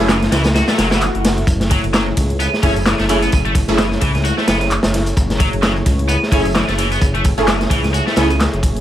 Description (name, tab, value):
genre	breakbeat, breaks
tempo	130 BPM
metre	4/4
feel	swing 57% on 16ths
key	unclear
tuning	A4 = 440 Hz
part	dark analog pad	sustained chords	0.0-8.8 s	A3 to E5	-24 LUFS	equal	chorus, sidechain pumping
part	orchestra-hit-like synth stab	stabs	0.0-8.3 s	A3 to G#4	-20 LUFS	right 1 dB	built-in reverb, phaser, cassette tape, digital delay
part	dark detuned saw bass	bass	0.0-8.8 s	F#1 to C#2	-20 LUFS	equal	none
part	high-gain distorted guitar	riff	0.1-8.3 s	E3 to F#4	-21 LUFS	equal	distortion, overdrive, digital delay
part	crunchy breakbeat drum kit	drums	0.1-8.8 s	hi-hat, kick drum, snare drum	-17 LUFS	equal	none
part	punchy analog drum machine	drums	0.1-8.8 s	handclaps, hi-hat, ride cymbal	-26 LUFS	equal	none
part	swell	sound effects	0.8-1.5 s	none	-28 LUFS	right 1 dB	none
room	studio ambience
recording	vinyl crackle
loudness	-13 LUFS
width	side -12 dB against mid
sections	0.0-8.8 A section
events	kick drops out 0.6-1.5; swell 0.8-1.5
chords	0.0 F#m7